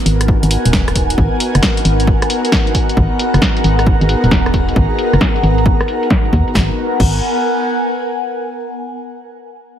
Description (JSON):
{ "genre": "UK garage, two-step garage", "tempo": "134 BPM", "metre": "4/4", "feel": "swing 66% on 16ths", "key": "G# minor", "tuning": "A4 = 440 Hz", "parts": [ { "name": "soft string machine", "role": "sustained chords", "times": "0.0-6.8 s", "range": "B3 to A#4", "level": "-22 LUFS", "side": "left 1 dB", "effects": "ensemble chorus, sidechain pumping" }, { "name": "airy breathy pad", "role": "texture", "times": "0.0-8.3 s", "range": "B3 to A#5", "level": "-19 LUFS", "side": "equal", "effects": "chorus, phaser, sidechain pumping" }, { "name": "organ-like FM bass", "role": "bass", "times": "0.1-7.2 s", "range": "D#1 to D#2", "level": "-14 LUFS", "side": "equal", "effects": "none" }, { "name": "punchy analog drum machine", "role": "drums", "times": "0.1-7.1 s", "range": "crash cymbal, hi-hat, rim click, snare drum", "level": "-18 LUFS", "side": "equal", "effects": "low-pass filter on hats, low-pass filter on perc, low-pass filter on snare, low-pass filter on cymbals" }, { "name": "electronic kick drum", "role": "drums", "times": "0.3-7.1 s", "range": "none", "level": "-16 LUFS", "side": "equal", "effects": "none" } ], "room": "light reverb, digital ambience", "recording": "heavily compressed radio sound", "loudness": "-12 LUFS", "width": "side -10 dB against mid", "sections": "0.0-6.6 A section; 6.6-8.3 B section", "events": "filter sweep on drum 0.0-6.6", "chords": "0.0 G#m9", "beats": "0.28 0.73 | 1.18 1.63 2.07 2.52 | 2.97 3.42 3.87 4.31 | 4.76 5.21 5.66 6.10 | 6.55 7.00 7.45 7.89" }